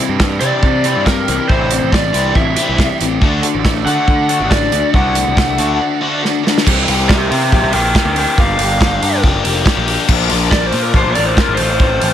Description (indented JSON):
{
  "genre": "indie rock",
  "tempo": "140 BPM",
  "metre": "4/4",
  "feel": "straight",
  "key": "unclear",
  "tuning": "A4 = 440 Hz",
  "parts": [
    { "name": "bright tonewheel organ", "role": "sustained chords", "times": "0.0-12.1 s", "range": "E4 to D6", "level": "-27 LUFS", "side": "right 1 dB", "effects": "none" },
    { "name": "biting overdriven guitar", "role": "riff", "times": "0.0-6.7 s", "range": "C3 to G4", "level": "-22 LUFS", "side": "right 10 dB", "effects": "ensemble chorus, slapback echo" },
    { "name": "raw garage guitar", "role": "riff", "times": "0.0-12.1 s", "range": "E3 to G4", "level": "-18 LUFS", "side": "left 6 dB", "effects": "overdrive, phaser" },
    { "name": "fuzz picked electric bass", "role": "bass", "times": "0.1-12.1 s", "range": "F1 to D3", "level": "-19 LUFS", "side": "equal", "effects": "overdrive" },
    { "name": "loose indie drum kit", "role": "drums", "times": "0.2-12.1 s", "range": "crash cymbal, hi-hat, kick drum, snare drum", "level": "-15 LUFS", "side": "right 1 dB", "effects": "none" },
    { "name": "lead guitar through a small cranked amp", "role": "melody", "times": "0.4-12.1 s", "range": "G4 to G5", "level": "-17 LUFS", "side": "equal", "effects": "overdrive, slapback echo" }
  ],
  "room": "light reverb",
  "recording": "none",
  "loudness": "-11 LUFS",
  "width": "side -10 dB against mid",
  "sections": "0.0-6.7 A section; 6.7-12.1 B section",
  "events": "drum fill 6.2-6.7; lead electric guitar solo 6.7-12.1",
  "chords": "0.0 Cadd9; 3.2 D; 6.7 C7; 8.4 Gm7; 10.1 Bbmaj7; 11.6 F6/A",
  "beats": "0.20 0.63 1.06 | 1.49 1.92 2.35 2.78 | 3.21 3.64 4.07 4.50 | 4.94 5.37 5.80 6.23 | 6.66 7.09 7.51 7.94 | 8.37 8.80 9.23 9.66 | 10.09 10.52 10.95 11.38 | 11.80"
}